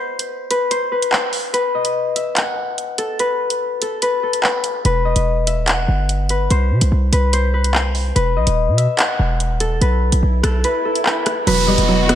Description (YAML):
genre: hip hop, drill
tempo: 145 BPM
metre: 4/4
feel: half-time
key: E harmonic minor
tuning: A4 = 440 Hz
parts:
  - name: Celtic harp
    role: melody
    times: 0.0-12.2 s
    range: A4 to F#5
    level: -20 LUFS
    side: left 3 dB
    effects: low-pass filter, diffuse ambient delay
  - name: drill drum kit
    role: drums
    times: 0.2-12.2 s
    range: crash cymbal, handclaps, hi-hat, rim click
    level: -21 LUFS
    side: equal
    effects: vintage 12-bit sampler grit
  - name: hard-hitting 808-style bass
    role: bass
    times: 4.8-12.2 s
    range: D#1 to C3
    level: -17 LUFS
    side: equal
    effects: none
  - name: swell and downlifter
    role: sound effects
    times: 10.3-12.2 s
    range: none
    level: -24 LUFS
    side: right 4 dB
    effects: none
  - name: hollow square pluck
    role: accompaniment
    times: 11.5-12.2 s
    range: F#3 to B3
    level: -18 LUFS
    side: right 2 dB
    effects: chorus, low-pass filter
  - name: warm studio string section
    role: sustained chords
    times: 11.5-12.2 s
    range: E3 to F#4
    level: -22 LUFS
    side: right 2 dB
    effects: none
room: light reverb, digital ambience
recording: none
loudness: -15 LUFS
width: side -11 dB against mid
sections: 0.0-11.5 A section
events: break 0.0-4.8, 10.6-11.5; swell 10.3-11.5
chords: 0.0 N.C.; 4.8 Emadd9; 6.5 N.C.; 8.2 Esus2; 9.8 Asus2/B; 11.5 Emadd9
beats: 0.30 0.71 1.12 | 1.54 1.95 2.37 2.78 | 3.19 3.61 4.02 4.43 | 4.85 5.26 5.68 6.09 | 6.50 6.92 7.33 7.75 | 8.16 8.57 8.99 9.40 | 9.81 10.23 10.64 11.06 | 11.47 11.88